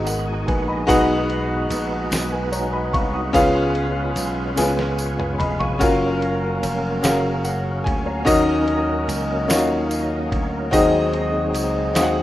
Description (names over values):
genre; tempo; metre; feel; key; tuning
slow gospel; 49 BPM (dotted quarters); 6/8; straight; F# major; A4 = 441 Hz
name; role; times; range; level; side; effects
warm grand piano; accompaniment; 0.0-12.2 s; G#2 to D#6; -20 LUFS; left 1 dB; none
bright tonewheel organ; sustained chords; 0.0-12.2 s; F#3 to B5; -27 LUFS; right 2 dB; fast rotary speaker, chorus vibrato
vintage slap bass; bass; 0.0-12.2 s; E#1 to D#2; -26 LUFS; equal; none
lo-fi sampler-style drum kit; drums; 0.1-12.1 s; kick drum, ride cymbal, snare drum, toms; -27 LUFS; equal; none
tambourine; percussion; 0.1-12.2 s; none; -31 LUFS; right 1 dB; none
room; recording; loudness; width
little or no reverb; rough home demo mix, lossy compression artefacts; -18 LUFS; side -14 dB against mid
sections
0.0-12.2 A section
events
drum fill 4.6-5.8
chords
0.0 G#m7; 0.9 B6; 3.4 C#7; 5.8 F#maj7; 8.3 D#m7; 10.7 G#7